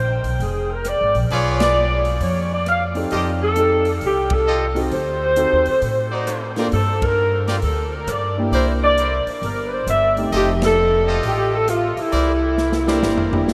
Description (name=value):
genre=jazz, big band swing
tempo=133 BPM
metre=4/4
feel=swing 65% on 8ths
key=unclear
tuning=A4 = 440 Hz
part: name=mellow saxophone section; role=melody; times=0.0-13.5 s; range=E4 to F5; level=-21 LUFS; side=equal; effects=none
part: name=upright bass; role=bass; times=0.0-13.5 s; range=F1 to A2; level=-25 LUFS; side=equal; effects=none
part: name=swinging big-band drum kit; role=drums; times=0.2-13.5 s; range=hi-hat, kick drum, ride cymbal, rim click, snare drum, toms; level=-31 LUFS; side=equal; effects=none
part: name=bright trumpet section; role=stabs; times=1.3-13.4 s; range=Eb4 to Eb5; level=-30 LUFS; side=equal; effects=none
part: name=dark concert grand piano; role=accompaniment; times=2.9-13.5 s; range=A3 to A4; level=-29 LUFS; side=equal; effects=none
room=wet huge ambient reverb, RT60 8.4 s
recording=in a vast, echoing space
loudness=-19 LUFS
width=mono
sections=0.0-13.5 A section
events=band accent 1.5, 4.2, 6.9, 10.5; drum fill 12.6-13.5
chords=0.0 Bb5; 1.3 Bdim7; 3.1 F9; 4.9 D7b9; 6.7 Gm; 8.5 C9; 10.3 F9; 12.1 C9